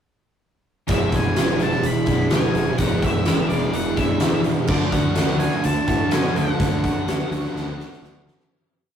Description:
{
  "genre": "rock, shoegaze and dream pop",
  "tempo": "126 BPM",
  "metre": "4/4",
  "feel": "straight",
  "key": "E mixolydian",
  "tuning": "A4 = 440 Hz",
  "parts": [
    { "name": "octave-fuzz lead guitar", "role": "melody", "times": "0.9-8.2 s", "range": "D5 to B5", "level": "-29 LUFS", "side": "left 1 dB", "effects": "distortion" },
    { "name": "fingerpicked twelve-string acoustic guitar", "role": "arpeggios", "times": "0.9-8.5 s", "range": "E3 to A4", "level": "-34 LUFS", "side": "left 2 dB", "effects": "none" },
    { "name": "crunchy overdriven guitar", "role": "riff", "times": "0.9-8.5 s", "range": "E2 to D4", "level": "-27 LUFS", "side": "equal", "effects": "none" },
    { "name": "overdriven electric guitar", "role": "riff", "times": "0.9-8.5 s", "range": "E2 to F#4", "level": "-28 LUFS", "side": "right 3 dB", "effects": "none" },
    { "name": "overdriven semi-hollow guitar", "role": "riff", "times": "0.9-8.5 s", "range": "D3 to G#4", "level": "-27 LUFS", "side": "left 1 dB", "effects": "none" },
    { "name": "growling fingered electric bass", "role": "bass", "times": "0.9-8.3 s", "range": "E1 to B2", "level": "-26 LUFS", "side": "left 1 dB", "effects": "overdrive" },
    { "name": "huge arena drum kit", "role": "drums", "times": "0.9-8.5 s", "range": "crash cymbal, hi-hat, kick drum, snare drum", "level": "-22 LUFS", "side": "equal", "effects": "none" }
  ],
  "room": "wet booth ambience, RT60 0.3 s",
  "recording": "rough rehearsal-room recording, warm saturation",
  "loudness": "-18 LUFS",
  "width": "side -8 dB against mid",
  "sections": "0.9-8.5 A section",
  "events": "fade-out 6.6-8.5; drum fill 7.5-8.5",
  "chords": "0.9 E7; 4.7 D"
}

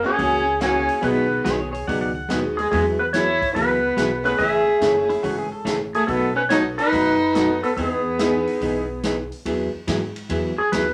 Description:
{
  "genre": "country, western swing",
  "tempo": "142 BPM",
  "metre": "4/4",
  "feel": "swing 67% on 8ths",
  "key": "E major",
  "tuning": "A4 = 442 Hz",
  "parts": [
    { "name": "clean lap steel guitar", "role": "melody", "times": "0.0-10.9 s", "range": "G#4 to E5", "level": "-25 LUFS", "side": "equal", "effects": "none" },
    { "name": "dark fiddle", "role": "second line", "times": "0.0-9.0 s", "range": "G#3 to G#4", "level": "-25 LUFS", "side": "equal", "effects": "none" },
    { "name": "tack piano", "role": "accompaniment", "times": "0.0-8.8 s", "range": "G#3 to A4", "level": "-29 LUFS", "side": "equal", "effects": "none" },
    { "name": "vintage hollow-body jazz guitar", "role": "accompaniment", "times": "0.2-10.8 s", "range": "B2 to G#4", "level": "-27 LUFS", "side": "equal", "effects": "none" },
    { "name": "upright bass", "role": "bass", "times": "0.2-10.9 s", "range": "F#1 to G#2", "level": "-35 LUFS", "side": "equal", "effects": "none" },
    { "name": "swinging big-band drum kit", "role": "drums", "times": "0.2-10.9 s", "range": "hi-hat, kick drum, ride cymbal, snare drum", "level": "-35 LUFS", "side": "equal", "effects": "none" },
    { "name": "pedal steel guitar", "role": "second line", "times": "1.4-2.4, 5.1-5.7 s", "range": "E4 to F#5", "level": "-31 LUFS", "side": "equal", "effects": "none" }
  ],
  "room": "wet studio reverb, RT60 0.6 s",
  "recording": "none",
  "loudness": "-21 LUFS",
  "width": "mono",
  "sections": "0.0-9.5 A section; 9.5-10.9 B section",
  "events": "electric slide guitar solo 9.5-10.9",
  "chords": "0.0 F#7; 1.0 B6; 2.7 Eadd9; 4.4 Amaj7; 6.1 B7; 7.8 Emaj7; 9.5 Eadd9"
}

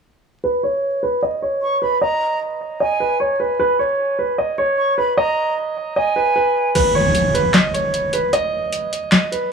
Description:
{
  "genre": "hip hop, trap",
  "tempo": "152 BPM",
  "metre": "4/4",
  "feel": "half-time",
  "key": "unclear",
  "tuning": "A4 = 438 Hz",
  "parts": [
    { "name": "dark baby grand piano", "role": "melody", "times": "0.4-9.5 s", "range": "B4 to D#5", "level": "-18 LUFS", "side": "right 1 dB", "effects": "low-pass filter, analog delay" },
    { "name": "concert flute", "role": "second line", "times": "1.6-6.7 s", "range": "G#5 to C#6", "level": "-22 LUFS", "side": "right 2 dB", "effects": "analog delay" },
    { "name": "booming analog drum machine", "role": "drums", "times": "6.8-9.4 s", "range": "crash cymbal, handclaps, hi-hat, snare drum", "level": "-18 LUFS", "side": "left 1 dB", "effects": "none" },
    { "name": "impact", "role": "sound effects", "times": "6.8-8.3 s", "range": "none", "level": "-23 LUFS", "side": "equal", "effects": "none" }
  ],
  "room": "light reverb",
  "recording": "vinyl crackle",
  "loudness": "-16 LUFS",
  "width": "side -6 dB against mid",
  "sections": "0.4-6.8 A section; 6.8-9.5 B section",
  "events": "filter sweep on grand piano 0.4-6.8; kick muted 6.8-9.5; impact 6.8-8.3",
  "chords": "none"
}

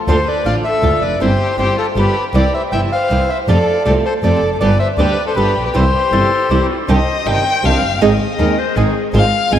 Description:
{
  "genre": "tango",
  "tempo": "159 BPM",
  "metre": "3/4",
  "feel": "rubato",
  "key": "C major",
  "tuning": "A4 = 440 Hz",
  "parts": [
    { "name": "bandoneon", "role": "melody", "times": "0.1-6.7 s", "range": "A4 to G5", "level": "-18 LUFS", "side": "left 1 dB", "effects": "diffuse ambient delay" },
    { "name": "warm violin", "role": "second line", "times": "0.1-9.6 s", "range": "F4 to Ab5", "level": "-20 LUFS", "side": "left 2 dB", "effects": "none" },
    { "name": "flamenco guitar", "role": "accompaniment", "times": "0.1-9.6 s", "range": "C3 to Ab4", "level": "-19 LUFS", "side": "right 4 dB", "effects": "analog chorus" },
    { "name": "clear double bass", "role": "bass", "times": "0.1-9.6 s", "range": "F1 to F2", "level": "-17 LUFS", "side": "equal", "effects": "none" },
    { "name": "bright clarinet", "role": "second line", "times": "6.1-9.0 s", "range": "G4 to C5", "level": "-23 LUFS", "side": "left 7 dB", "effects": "none" }
  ],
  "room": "wet lush hall reverb, RT60 2.9 s",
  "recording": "dreamy mix soaked in reverb",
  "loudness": "-12 LUFS",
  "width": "side -10 dB against mid",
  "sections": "0.0-6.9 A section; 6.9-9.6 B section",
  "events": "violin solo 6.9-9.6",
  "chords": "0.1 Dm; 1.2 C/G; 2.0 G; 2.3 C; 3.5 F; 4.6 G; 5.7 C; 6.9 Cmadd9; 8.0 Ab"
}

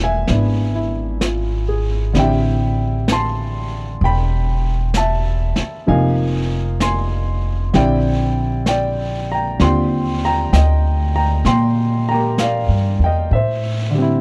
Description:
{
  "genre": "jazz ballad",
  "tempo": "64 BPM",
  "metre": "4/4",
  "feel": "swing 69% on 8ths",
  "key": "unclear",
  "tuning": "A4 = 440 Hz",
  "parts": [
    { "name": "clear grand piano", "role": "accompaniment", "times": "0.0-14.2 s", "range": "C3 to C6", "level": "-22 LUFS", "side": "equal", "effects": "none" },
    { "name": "upright bass", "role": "bass", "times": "0.0-14.2 s", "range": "E1 to Bb2", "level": "-20 LUFS", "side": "equal", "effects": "none" },
    { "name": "vintage brush drum kit", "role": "drums", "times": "0.3-14.2 s", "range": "brushed snare drum, hi-hat, snare drum", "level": "-28 LUFS", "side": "equal", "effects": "none" }
  ],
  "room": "little or no reverb",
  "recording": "dry, close 1970s-style studio recording",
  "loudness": "-18 LUFS",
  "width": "mono",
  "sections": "0.0-14.2 A section",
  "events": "none",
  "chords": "0.0 E7b9; 2.1 Am7; 5.9 Fm7; 7.7 Bb69; 9.6 Ebmaj9; 13.3 Am7"
}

